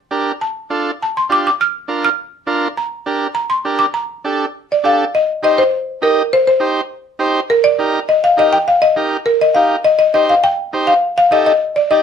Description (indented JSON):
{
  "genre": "latin",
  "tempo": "204 BPM",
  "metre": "4/4",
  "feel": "straight",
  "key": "unclear",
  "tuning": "A4 = 441 Hz",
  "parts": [
    { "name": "combo organ", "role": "accompaniment", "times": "0.1-12.0 s", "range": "D4 to Eb5", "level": "-18 LUFS", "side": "right 3 dB", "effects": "none" },
    { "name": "buzzing marimba with medium hard mallets", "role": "melody", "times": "0.4-12.0 s", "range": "Bb4 to F6", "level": "-13 LUFS", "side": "left 2 dB", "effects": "none" }
  ],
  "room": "moderate studio reverb, RT60 0.6 s",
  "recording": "lossy compression artefacts",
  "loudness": "-13 LUFS",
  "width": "side -7 dB against mid",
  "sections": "0.0-5.1 A section; 5.1-12.0 B section",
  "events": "none",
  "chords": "0.4 Dm; 1.6 Bb; 2.8 Gm; 5.1 Cm; 7.5 Eb; 9.9 Cm"
}